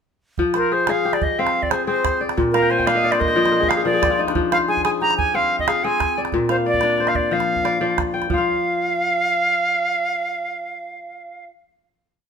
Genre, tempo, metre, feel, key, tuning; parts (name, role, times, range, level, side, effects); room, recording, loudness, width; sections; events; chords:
west african traditional, West African string and xylophone music; 121 BPM (dotted quarters); 12/8; straight; F dorian; A4 = 440 Hz
kora; arpeggios; 0.4-11.6 s; Bb2 to Ab5; -21 LUFS; left 3 dB
calabash; percussion; 0.4-8.5 s; -26 LUFS; right 5 dB
bright reedy concert flute; melody; 0.6-11.5 s; Bb4 to Bb5; -20 LUFS; right 2 dB
light reverb; band playing live in one room; -17 LUFS; side -6 dB against mid
0.4-8.3 A section; 8.3-12.3 final note
kora fill 2.5-4.4
0.4 Fm; 2.4 Bb; 4.4 Fm; 6.3 Bb; 8.3 Fsus2